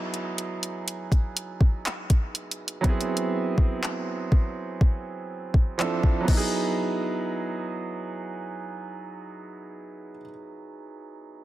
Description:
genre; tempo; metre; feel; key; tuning
contemporary R&B; 61 BPM; 4/4; straight; E major; A4 = 438 Hz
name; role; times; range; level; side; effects
clear baby grand piano; accompaniment; 0.0-11.4 s; F3 to A4; -30 LUFS; right 3 dB; none
smooth R&B drum kit; drums; 0.1-6.5 s; crash cymbal, handclaps, hi-hat, kick drum; -23 LUFS; equal; none
room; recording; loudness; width
light reverb; dense, heavily limited modern master; -24 LUFS; side -15 dB against mid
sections
0.0-6.8 A section; 6.8-10.7 B section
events
none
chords
0.0 Emaj9; 2.8 G#7alt; 5.8 Dm9; 6.3 Emaj9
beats
0.87 1.86 | 2.84 3.82 4.81 5.79 | 6.77 7.76 8.74 9.72

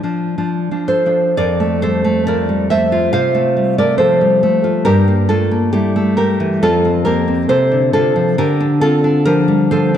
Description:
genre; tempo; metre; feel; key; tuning
romantic piece for solo classical guitar; 68 BPM; 4/4; rubato; F major; A4 = 440 Hz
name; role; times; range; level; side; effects
nylon-string guitar; solo; 0.0-10.0 s; F2 to F5; -12 LUFS; equal; none
room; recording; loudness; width
moderate scoring stage reverb, RT60 1.9 s; dark, warm production; -12 LUFS; side -9 dB against mid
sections
0.0-1.4 A section; 1.4-10.0 B section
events
none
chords
0.0 Dm; 1.4 F; 4.9 Edim/G; 6.6 F; 8.4 Dm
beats
0.38 | 1.37 2.26 3.12 3.99 | 4.85 5.72 6.61 7.49 | 8.38 9.26

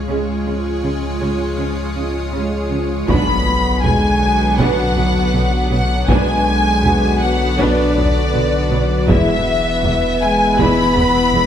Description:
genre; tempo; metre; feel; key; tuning
cinematic, hybrid orchestral and electronic film score; 80 BPM; 4/4; straight; B dorian; A4 = 440 Hz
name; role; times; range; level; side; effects
dark symphonic viola section; accompaniment; 0.0-11.4 s; C#3 to E#4; -23 LUFS; right 2 dB; none
evolving wavetable pad; sustained chords; 0.0-11.5 s; G#3 to C#5; -23 LUFS; left 1 dB; ensemble chorus, built-in reverb
saturated sub bass; bass; 0.0-11.5 s; E1 to C#2; -22 LUFS; equal; none
warm symphonic cello section; bass; 0.1-11.4 s; E2 to C#3; -24 LUFS; right 2 dB; none
warm studio violin section; melody; 3.1-11.5 s; D5 to B5; -21 LUFS; left 2 dB; none
dark studio violin section; second line; 3.1-11.5 s; D5 to B5; -21 LUFS; left 2 dB; none
dark trombone section; sustained chords; 3.1-11.5 s; D3 to B3; -24 LUFS; right 1 dB; none
warm French horn section; sustained chords; 3.1-11.5 s; D3 to B3; -22 LUFS; left 2 dB; none
rich studio double bass section; bass; 3.1-11.4 s; E1 to B1; -25 LUFS; right 2 dB; none
taiko ensemble; drums; 3.1-11.3 s; none; -23 LUFS; equal; none
impact; sound effects; 3.1-6.1 s; none; -26 LUFS; equal; none
room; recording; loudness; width
wet recital hall reverb, RT60 1.3 s; recorded in a church or concert hall; -14 LUFS; side -9 dB against mid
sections
0.0-3.1 A section; 3.1-11.5 B section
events
build-up 0.0-3.1; impact 3.1-6.1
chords
0.0 C#; 3.1 Bm; 9.1 E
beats
| 0.09 0.84 1.59 2.34 | 3.09 3.84 4.59 5.34 | 6.09 6.84 7.59 8.34 | 9.09 9.84 10.59 11.34

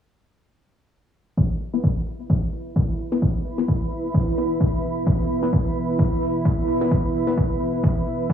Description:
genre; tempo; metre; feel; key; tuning
bass house; 130 BPM; 4/4; swing 55% on 16ths; unclear; A4 = 440 Hz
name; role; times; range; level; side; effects
dark analog pad; sustained chords; 1.4-8.3 s; B3 to E5; -29 LUFS; equal; chorus, sidechain pumping
electronic kick drum; drums; 1.4-8.3 s; none; -21 LUFS; equal; overdrive
granular cloud pad; texture; 2.6-8.3 s; E4 to B5; -27 LUFS; right 2 dB; built-in reverb, sidechain pumping
electronic hi-hat; drums; 1.6-8.2 s; none; -60 LUFS; right 4 dB; none
band-passed chord stab; stabs; 1.7-7.4 s; B3 to B4; -28 LUFS; left 3 dB; phaser, wide subtle chorus, sidechain pumping, digital delay
room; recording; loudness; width
light reverb; low-pass filter, studio reverb; -20 LUFS; side -8 dB against mid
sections
1.4-8.3 A section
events
filter sweep on synth stab 1.4-8.3; filter sweep 1.4-8.3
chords
1.4 E5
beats
| 1.38 1.84 2.30 2.76 | 3.22 3.68 4.14 4.61 | 5.07 5.53 5.99 6.45 | 6.91 7.38 7.84 8.30

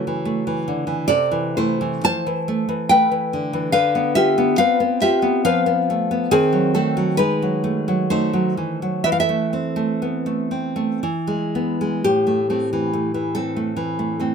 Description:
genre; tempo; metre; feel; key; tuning
romantic piece for solo classical guitar; 57-76 BPM; 3/4; rubato; A minor; A4 = 440 Hz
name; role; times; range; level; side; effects
nylon-string guitar; solo; 0.0-14.3 s; A2 to A5; -18 LUFS; equal; none
room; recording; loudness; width
little or no reverb; close, detailed microphones; -18 LUFS; side -6 dB against mid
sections
0.0-12.1 A section; 12.1-14.3 B section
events
none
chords
0.0 A/C#; 1.1 Am/C; 3.8 Bdim/D; 6.3 D#dim7; 9.1 Am/E; 11.0 E; 12.1 Am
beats
0.29 | 1.12 2.07 2.91 | 3.75 4.60 5.46 | 6.32 7.20 8.12 | 9.08 10.04 11.04 | 12.06 12.96 13.79

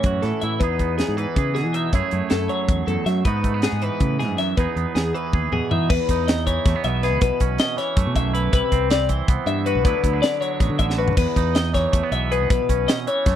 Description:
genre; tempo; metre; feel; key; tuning
math rock and midwest emo; 318 BPM (eighths); 7/8; straight; E major; A4 = 440 Hz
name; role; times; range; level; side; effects
twangy electric guitar; accompaniment; 0.0-13.4 s; E2 to G#4; -26 LUFS; right 10 dB; spring reverb
twelve-string electric guitar; arpeggios; 0.0-13.4 s; G#4 to E5; -24 LUFS; left 7 dB; wide subtle chorus, slapback echo
fingered electric bass; bass; 0.0-13.3 s; A1 to F#3; -24 LUFS; equal; none
crisp fusion drum kit; drums; 0.0-13.3 s; crash cymbal, hi-hat, kick drum, snare drum, toms; -22 LUFS; equal; none
room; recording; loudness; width
little or no reverb; dry, close 1970s-style studio recording; -18 LUFS; side -10 dB against mid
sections
0.0-5.9 A section; 5.9-13.4 B section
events
drum fill 5.3-5.9, 10.9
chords
0.0 A6; 0.6 Emaj7; 1.9 F#m9; 3.3 Emaj9/G#; 4.6 Emaj7; 7.2 B9sus4; 8.5 Cmaj7; 9.8 D69; 11.2 Emaj7; 12.5 Bsus4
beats
0.04 0.23 0.42 | 0.61 0.80 0.98 1.17 1.36 1.55 1.74 | 1.93 2.12 2.31 2.50 2.69 2.87 3.06 | 3.25 3.44 3.63 3.82 4.01 4.20 4.39 | 4.58 4.76 4.95 5.14 5.33 5.52 5.71 | 5.90 6.09 6.27 6.46 6.65 6.84 7.03 | 7.22 7.40 7.59 7.78 7.97 8.16 8.34 | 8.53 8.72 8.91 9.10 9.29 9.47 9.66 | 9.85 10.04 10.23 10.42 10.61 10.79 10.98 | 11.17 11.36 11.55 11.74 11.93 12.12 12.31 | 12.50 12.69 12.88 13.07 13.26

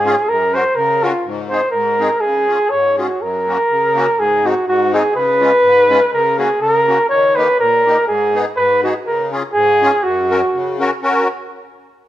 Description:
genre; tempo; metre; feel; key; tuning
alpine folk, alpine dance band; 123 BPM; 2/4; swing 54% on 8ths; Db major, F# major from 3.2 s; A4 = 440 Hz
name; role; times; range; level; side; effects
mellow flugelhorn; melody; 0.0-11.3 s; F4 to Db5; -13 LUFS; equal; none
musette accordion; accompaniment; 0.0-11.3 s; Gb2 to Bb4; -20 LUFS; left 3 dB; none
room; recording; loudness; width
moderate recital hall reverb, RT60 1.8 s; dark, warm production; -13 LUFS; side -13 dB against mid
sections
0.0-3.2 A section; 3.2-11.0 B section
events
none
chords
0.3 Gb; 1.2 Ab; 2.2 Db; 3.2 F#; 4.2 G#; 5.2 C#; 6.1 F#/C#; 7.1 D#; 8.1 G#m; 9.1 C#; 10.0 F#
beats
| 0.27 0.76 | 1.24 1.73 | 2.21 2.71 | 3.21 3.70 | 4.19 4.67 | 5.16 5.64 | 6.13 6.62 | 7.11 7.61 | 8.10 8.58 | 9.06 9.55 | 10.04 10.54 | 11.04

